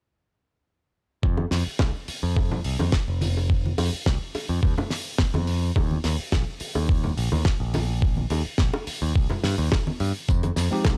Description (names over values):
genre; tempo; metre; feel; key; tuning
nu-disco, nu disco; 106 BPM; 4/4; straight; F minor; A4 = 439 Hz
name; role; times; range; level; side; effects
modern bright picked electric bass; bass; 1.2-11.0 s; F1 to G2; -28 LUFS; equal; none
electronic kick drum; drums; 1.2-11.0 s; none; -25 LUFS; equal; overdrive, small room ambience
congas, bongos and tambourine; percussion; 1.4-11.0 s; none; -33 LUFS; equal; none
damped 70s drum kit; drums; 1.5-11.0 s; hi-hat, snare drum; -33 LUFS; equal; small room ambience
tine electric piano; accompaniment; 10.7-11.0 s; F3 to G4; -27 LUFS; equal; sidechain pumping
room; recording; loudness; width
small room ambience; dry, gritty hardware recording, cassette tape; -25 LUFS; mono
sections
1.2-11.0 A section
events
none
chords
1.2 F5; 5.8 Eb5; 10.3 Fm7